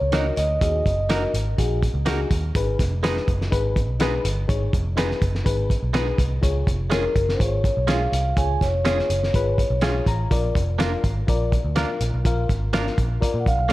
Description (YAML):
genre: uptempo 1960s-style soul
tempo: 124 BPM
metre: 4/4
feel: straight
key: Eb minor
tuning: A4 = 439 Hz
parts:
  - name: vibraphone with soft mallets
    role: melody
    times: 0.0-1.3, 6.9-10.0, 13.4-13.7 s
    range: Bb4 to Ab5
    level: -25 LUFS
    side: equal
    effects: tape echo
  - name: vintage muted picked electric bass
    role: bass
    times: 0.0-13.7 s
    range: F1 to Bb2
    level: -24 LUFS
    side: equal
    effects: none
  - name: reed electric piano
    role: accompaniment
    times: 0.1-13.7 s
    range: Eb4 to Bb5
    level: -28 LUFS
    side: left 4 dB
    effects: spring reverb
  - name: direct-recorded clean electric guitar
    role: stabs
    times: 0.1-13.7 s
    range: Ab3 to Bb4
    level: -30 LUFS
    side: right 7 dB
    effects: spring reverb
  - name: cloth-damped thuddy drum kit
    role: drums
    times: 0.1-13.7 s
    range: hi-hat, kick drum, snare drum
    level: -24 LUFS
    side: equal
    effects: none
room: small room reverb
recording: none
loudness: -19 LUFS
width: side -17 dB against mid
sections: 0.0-13.7 A section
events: reed electric piano fill 9.6-10.3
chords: 0.0 Ebm; 2.6 Abm; 6.4 Db; 10.3 Bb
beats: 0.13 | 0.61 1.10 1.58 2.07 | 2.55 3.04 3.52 4.01 | 4.49 4.98 5.46 5.95 | 6.43 6.92 7.40 7.88 | 8.37 8.85 9.34 9.82 | 10.31 10.79 11.28 11.76 | 12.25 12.73 13.22 13.70